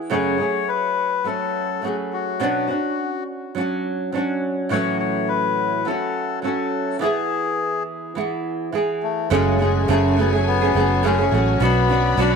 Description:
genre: acoustic pop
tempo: 104 BPM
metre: 4/4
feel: swing 55% on 16ths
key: unclear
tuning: A4 = 440 Hz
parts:
  - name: flamenco guitar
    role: accompaniment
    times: 0.0-12.4 s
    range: F#2 to G#4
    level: -22 LUFS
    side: right 3 dB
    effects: double-tracked left and right
  - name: melodica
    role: melody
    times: 0.1-12.3 s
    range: G#3 to C#5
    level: -23 LUFS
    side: left 9 dB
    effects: tape echo
  - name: rich studio string section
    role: sustained chords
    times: 9.3-12.4 s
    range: F#4 to B5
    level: -30 LUFS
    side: equal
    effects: none
  - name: vintage muted fingered electric bass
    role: bass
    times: 9.3-12.4 s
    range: F#1 to B1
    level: -21 LUFS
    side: right 2 dB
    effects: none
room: moderate spring reverb, RT60 1.6 s, studio reverb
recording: none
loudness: -19 LUFS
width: side -6 dB against mid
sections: 0.0-9.3 A section; 9.3-12.4 B section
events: none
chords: 0.1 F#madd9; 2.4 Bmadd9; 4.7 A6; 7.0 E; 9.3 F#madd9; 11.6 Bmadd9

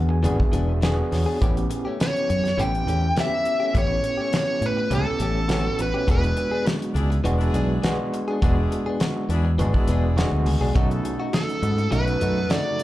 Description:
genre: straight-eighth soul blues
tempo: 103 BPM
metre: 4/4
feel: straight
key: E mixolydian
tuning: A4 = 440 Hz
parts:
  - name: overdriven tine electric piano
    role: accompaniment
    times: 0.0-12.8 s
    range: C#3 to G#5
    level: -28 LUFS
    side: right 2 dB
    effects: medium tremolo, slapback echo
  - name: fingered electric bass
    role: bass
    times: 0.0-12.4 s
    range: E1 to A2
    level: -22 LUFS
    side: equal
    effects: none
  - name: direct-recorded clean electric guitar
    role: stabs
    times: 0.1-12.8 s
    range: E3 to G#4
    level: -30 LUFS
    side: left 5 dB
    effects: slapback echo, analog delay
  - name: damped 70s drum kit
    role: drums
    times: 0.2-12.8 s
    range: hi-hat, kick drum, snare drum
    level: -24 LUFS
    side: equal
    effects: none
  - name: dark smooth lead guitar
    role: melody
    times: 2.0-6.6, 11.3-12.8 s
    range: A4 to G5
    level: -25 LUFS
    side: equal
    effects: overdrive
  - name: bright horn section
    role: sustained chords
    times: 6.1-12.6 s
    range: B3 to A4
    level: -35 LUFS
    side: left 2 dB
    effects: none
room: light reverb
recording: live gig heard through the venue's PA, club reverb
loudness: -20 LUFS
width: side -15 dB against mid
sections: 0.0-12.8 A section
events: tine electric piano fill 0.0-1.4, 9.9-10.7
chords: 0.0 E7; 1.4 A7; 6.1 E7; 10.7 B7

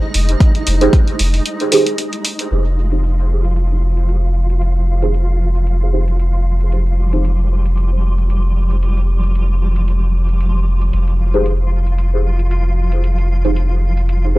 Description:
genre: dub techno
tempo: 114 BPM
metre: 4/4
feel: swing 55% on 16ths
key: F minor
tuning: A4 = 439 Hz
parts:
  - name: flickering grainy texture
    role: texture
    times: 0.0-14.4 s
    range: F3 to F4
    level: -26 LUFS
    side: equal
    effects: built-in reverb, sidechain pumping
  - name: soft dub sub bass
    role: bass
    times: 0.1-14.4 s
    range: F1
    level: -14 LUFS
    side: equal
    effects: transformer saturation, sidechain pumping
  - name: electronic hi-hat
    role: drums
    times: 0.1-14.2 s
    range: none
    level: -22 LUFS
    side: equal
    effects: low-pass filter on hats, low-pass filter on room
  - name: electronic kick drum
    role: drums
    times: 0.4-1.0 s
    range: none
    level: -11 LUFS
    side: equal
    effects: overdrive
  - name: deep mellow chord stab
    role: stabs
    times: 0.8-7.2, 11.3-14.4 s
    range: Eb4 to C5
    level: -19 LUFS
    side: right 2 dB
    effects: chorus, phaser, sidechain pumping, dub echo
room: little or no reverb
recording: dry, gritty hardware recording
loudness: -13 LUFS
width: side -19 dB against mid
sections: 0.0-2.5 A section; 2.5-14.4 B section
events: break 1.5-2.5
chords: 0.0 Fm7

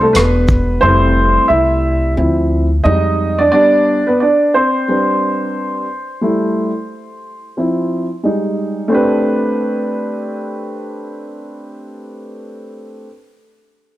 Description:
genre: hip hop, jazz-hop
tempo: 89 BPM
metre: 4/4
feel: swing 63% on 16ths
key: A minor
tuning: A4 = 440 Hz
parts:
  - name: dark upright piano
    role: accompaniment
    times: 0.0-13.1 s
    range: F3 to E5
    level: -14 LUFS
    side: equal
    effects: none
  - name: upright bass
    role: bass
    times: 0.0-3.5 s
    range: E1 to F2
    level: -16 LUFS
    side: equal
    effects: none
  - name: cloth-damped thuddy drum kit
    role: drums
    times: 0.1-0.7 s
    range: hi-hat, kick drum, rim click, shaker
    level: -15 LUFS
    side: equal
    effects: none
room: light reverb, small room ambience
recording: none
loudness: -12 LUFS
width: side -15 dB against mid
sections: 0.0-8.9 A section; 8.9-11.6 B section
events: upright piano solo 0.0-8.9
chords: 0.0 Am11; 0.8 Fmaj9; 2.2 Dm9; 2.8 Fm7; 3.5 G; 4.5 Gadd11; 6.2 Am7/G; 7.6 Cadd11/F; 8.2 D#add11/G; 8.9 Am11

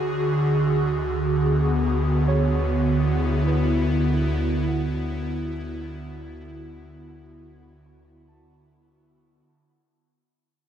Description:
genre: ambient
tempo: 50 BPM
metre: 4/4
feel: straight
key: unclear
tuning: A4 = 440 Hz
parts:
  - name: airy breathy pad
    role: sustained chords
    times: 0.0-9.5 s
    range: D3 to G#4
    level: -22 LUFS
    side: right 1 dB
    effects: chorus
  - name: muted felt-like synth keys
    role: arpeggios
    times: 0.0-10.0 s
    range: B4 to A5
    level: -37 LUFS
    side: right 4 dB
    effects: chorus, phaser, tape echo
  - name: warm sub bass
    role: bass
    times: 0.0-9.4 s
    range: D2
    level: -28 LUFS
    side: left 1 dB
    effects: tube saturation
room: wet concert hall reverb, RT60 2.2 s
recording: dark, warm production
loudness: -20 LUFS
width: side -9 dB against mid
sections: 0.0-9.5 A section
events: fade-out on synth keys 0.0-9.5; fade-out 0.0-9.5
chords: 0.0 D69

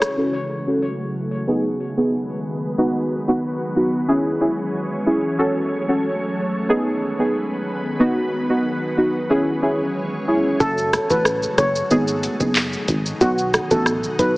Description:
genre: dancehall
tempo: 92 BPM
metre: 4/4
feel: straight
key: F# dorian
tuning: A4 = 440 Hz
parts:
  - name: deep mellow chord stab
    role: accompaniment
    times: 0.0-14.4 s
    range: B3 to A4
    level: -20 LUFS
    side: equal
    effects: chorus, low-pass filter
  - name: ethereal airy pad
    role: sustained chords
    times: 0.0-14.4 s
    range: B2 to C#5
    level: -26 LUFS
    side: equal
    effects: ensemble chorus, built-in reverb, sidechain pumping, low-pass filter
  - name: island pop drum kit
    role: drums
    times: 0.0-0.2, 10.6-14.4 s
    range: handclaps, hi-hat, kick drum, rim click, shaker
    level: -22 LUFS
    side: equal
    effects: none
  - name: steel pan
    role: melody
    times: 10.6-14.3 s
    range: F#4 to C#5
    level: -21 LUFS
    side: equal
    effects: tape echo
  - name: solid FM bass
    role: bass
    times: 10.6-14.4 s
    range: F#1 to B1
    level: -25 LUFS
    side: equal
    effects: none
room: moderate lush hall reverb, RT60 2.3 s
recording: heavily compressed radio sound, multiband compression, small speaker sound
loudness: -18 LUFS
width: side -21 dB against mid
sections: 0.2-10.6 A section; 10.6-14.4 B section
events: filter sweep 0.2-10.6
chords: 0.2 F#m; 1.5 G#m; 2.8 B; 4.1 C#m; 5.4 F#m; 6.7 G#m; 8.0 B; 9.3 C#m; 10.6 F#m; 11.9 G#m; 13.2 B

